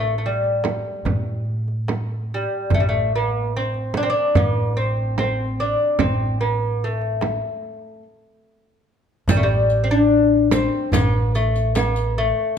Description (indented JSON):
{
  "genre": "Persian modal ensemble",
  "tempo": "73 BPM",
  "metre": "4/4",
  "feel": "straight",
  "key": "A dastgah shur",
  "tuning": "A4 = 441 Hz",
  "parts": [
    { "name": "lute", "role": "melody", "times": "0.0-12.6 s", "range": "G3 to D4", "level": "-20 LUFS", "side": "left 2 dB", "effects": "none" },
    { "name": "upright bass", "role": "bass", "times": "0.0-12.3 s", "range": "A1 to A2", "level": "-23 LUFS", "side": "right 1 dB", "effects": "none" },
    { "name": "tombak", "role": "percussion", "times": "0.4-11.9 s", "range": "none", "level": "-25 LUFS", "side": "left 1 dB", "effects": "none" },
    { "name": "frame drum", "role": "percussion", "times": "0.6-11.9 s", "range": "none", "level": "-24 LUFS", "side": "right 5 dB", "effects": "none" },
    { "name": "riq", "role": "percussion", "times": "9.3-12.1 s", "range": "none", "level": "-31 LUFS", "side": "left 5 dB", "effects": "none" }
  ],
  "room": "moderate recital hall reverb, RT60 1.6 s",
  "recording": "dark, warm production",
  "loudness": "-18 LUFS",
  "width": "side -8 dB against mid",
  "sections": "0.0-9.3 A section; 9.3-12.6 B section",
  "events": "break 7.6-9.3",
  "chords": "none"
}